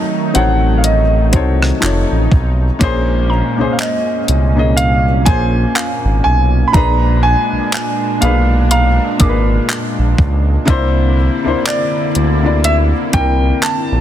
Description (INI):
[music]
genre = contemporary R&B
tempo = 61 BPM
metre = 4/4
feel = swing 58% on 16ths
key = unclear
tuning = A4 = 444 Hz
[part]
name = warm grand piano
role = melody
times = 0.0-14.0 s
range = D5 to Cb6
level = -19 LUFS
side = right 1 dB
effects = ping-pong delay
[part]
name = felt-muted upright piano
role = accompaniment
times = 0.0-14.0 s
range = Bb2 to Eb5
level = -19 LUFS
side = left 3 dB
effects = none
[part]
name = lush unison pad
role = sustained chords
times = 0.0-14.0 s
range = Bb2 to E4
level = -21 LUFS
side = right 1 dB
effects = chorus, sidechain pumping
[part]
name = mallet-like synth pluck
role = texture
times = 0.0-14.0 s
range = F5 to E6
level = -28 LUFS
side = right 2 dB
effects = chorus, ping-pong delay
[part]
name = crisp 8-bit digital drum machine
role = drums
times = 0.3-13.9 s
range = handclaps, hi-hat, kick drum, rim click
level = -16 LUFS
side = equal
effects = overdrive
[part]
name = smooth synth bass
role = bass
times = 0.4-14.0 s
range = F1 to D2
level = -14 LUFS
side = equal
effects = none
[sound]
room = digital ambience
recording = dense, heavily limited modern master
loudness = -11 LUFS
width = side -11 dB against mid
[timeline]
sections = 0.0-14.0 A section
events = none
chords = 0.0 F7b9b13/A (rootless); 1.8 F7b13; 2.8 Bbm9; 6.7 Bb7b9; 10.7 C9